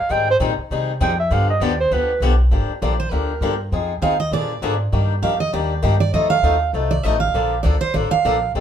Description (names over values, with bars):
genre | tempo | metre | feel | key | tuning
acoustic string swing (jazz manouche) | 199 BPM | 4/4 | swing 59% on 8ths | unclear | A4 = 441 Hz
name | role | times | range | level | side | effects
breathy clarinet | melody | 0.0-2.2 s | B4 to G5 | -19 LUFS | right 3 dB | none
picked swing-style acoustic guitar | accompaniment | 0.1-8.6 s | D3 to A4 | -23 LUFS | left 5 dB | none
upright bass | bass | 0.1-8.6 s | G1 to C3 | -21 LUFS | equal | none
picked steel-string acoustic guitar | second line | 2.8-8.5 s | Bb4 to F5 | -21 LUFS | right 6 dB | none
room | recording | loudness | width
light reverb | minimal, uncompressed stereo recording | -17 LUFS | side -9 dB against mid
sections
0.0-2.5 A section; 2.5-8.6 A section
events
clarinet solo 0.0-2.5; steel-string acoustic guitar solo 2.5-8.6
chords
0.1 Abmaj7; 1.3 G7; 2.5 Gm7; 3.7 Fm7; 4.3 Bb7; 4.9 Ebmaj7; 6.1 F7; 7.3 Bbmaj7